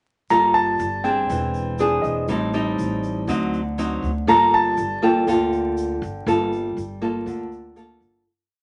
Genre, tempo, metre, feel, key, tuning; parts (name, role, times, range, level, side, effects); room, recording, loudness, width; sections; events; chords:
bossa nova; 121 BPM; 4/4; straight; G minor; A4 = 440 Hz
warm grand piano; melody; 0.3-7.7 s; Eb5 to Bb5; -23 LUFS; equal
nylon-string guitar; accompaniment; 0.3-8.2 s; A2 to A4; -24 LUFS; equal
upright bass; bass; 0.3-8.2 s; E1 to D2; -32 LUFS; equal
tube shaker; percussion; 0.3-8.3 s; -51 LUFS; equal
wet studio reverb, RT60 0.6 s; vinyl crackle, nothing above 11.0 kHz; -21 LUFS; mono
0.3-8.3 A section
fade-out 6.3-8.3
0.3 Gm9; 1.3 E7alt; 2.3 Am7b5; 3.3 D7b9; 4.3 Gm9